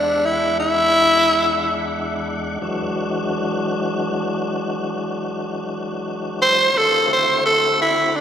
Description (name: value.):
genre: blues.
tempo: 58 BPM (dotted quarters).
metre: 12/8.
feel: straight.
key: unclear.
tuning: A4 = 440 Hz.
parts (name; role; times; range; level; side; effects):
growling tenor saxophone; melody; 0.0-8.2 s; D4 to C5; -15 LUFS; equal; none.
tonewheel organ; sustained chords; 0.0-8.2 s; E2 to F#5; -24 LUFS; left 1 dB; slow rotary speaker, chorus vibrato.
room: wet church reverb, RT60 3.4 s.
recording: recorded in a church or concert hall, faint mains hum.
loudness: -17 LUFS.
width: side -9 dB against mid.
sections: 0.0-8.2 A section.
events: tenor saxophone solo 0.0-8.2.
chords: 0.0 E9; 6.7 D9.